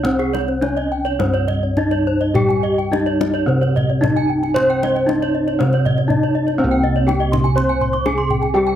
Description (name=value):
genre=Balinese gamelan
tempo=104-123 BPM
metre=4/4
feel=straight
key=C pelog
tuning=A4 = 444 Hz
part: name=gamelan-type bronze metallophone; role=melody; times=0.0-8.8 s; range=C4 to C5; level=-20 LUFS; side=equal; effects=plate reverb
part: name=gamelan-type bronze metallophone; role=arpeggios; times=0.0-8.8 s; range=Ab4-20c to Db6+20c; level=-25 LUFS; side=right 7 dB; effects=none
part: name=gamelan-type bossed gongs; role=bass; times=0.0-8.8 s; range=C2 to C5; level=-20 LUFS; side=equal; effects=none
part: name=kendang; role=percussion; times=0.0-8.5 s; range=none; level=-25 LUFS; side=left 3 dB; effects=none
part: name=gamelan-type bronze metallophone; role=arpeggios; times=0.1-8.7 s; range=C5 to C6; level=-24 LUFS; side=left 5 dB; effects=none
part: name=gamelan-type bronze metallophone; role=accompaniment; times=2.3-8.8 s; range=C3 to C4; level=-25 LUFS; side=right 2 dB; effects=none
room=light reverb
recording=none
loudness=-15 LUFS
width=side -10 dB against mid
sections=0.0-6.6 A section; 6.6-8.8 B section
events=none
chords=none